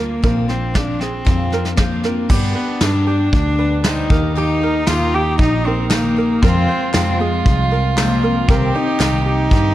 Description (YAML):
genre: indie folk with a building arrangement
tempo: 116 BPM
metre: 4/4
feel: straight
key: unclear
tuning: A4 = 441 Hz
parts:
  - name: warm cello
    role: melody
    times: 0.0-9.7 s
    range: Ab3 to G4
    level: -20 LUFS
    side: left 1 dB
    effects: none
  - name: picked steel-string acoustic guitar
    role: accompaniment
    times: 0.0-9.7 s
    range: F2 to G4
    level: -24 LUFS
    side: left 5 dB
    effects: none
  - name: ukulele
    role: arpeggios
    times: 0.0-9.7 s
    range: G4 to C5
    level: -27 LUFS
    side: right 6 dB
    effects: slapback echo
  - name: picked electric bass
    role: bass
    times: 0.0-9.7 s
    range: Bb1 to G2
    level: -20 LUFS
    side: equal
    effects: none
  - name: soft brush drum kit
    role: drums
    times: 0.2-9.6 s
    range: crash cymbal, kick drum, snare drum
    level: -18 LUFS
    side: equal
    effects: none
  - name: warm fiddle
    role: second line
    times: 2.3-9.7 s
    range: D4 to G4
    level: -23 LUFS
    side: right 4 dB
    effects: none
  - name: group handclap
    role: percussion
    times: 2.8-9.1 s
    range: none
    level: -32 LUFS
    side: left 2 dB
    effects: none
  - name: tambourine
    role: percussion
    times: 2.8-9.1 s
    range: none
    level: -38 LUFS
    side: left 7 dB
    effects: none
room: light reverb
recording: dark, warm production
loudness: -14 LUFS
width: side -14 dB against mid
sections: 0.0-2.3 A section; 2.3-9.7 B section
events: none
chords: 0.2 Bbadd9; 2.3 G; 4.1 Eb; 6.4 Fm; 8.5 Cm7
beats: | 0.24 0.76 1.27 1.79 | 2.30 2.82 3.33 3.85 | 4.37 4.88 5.39 5.91 | 6.42 6.94 7.46 7.97 | 8.48 9.00 9.51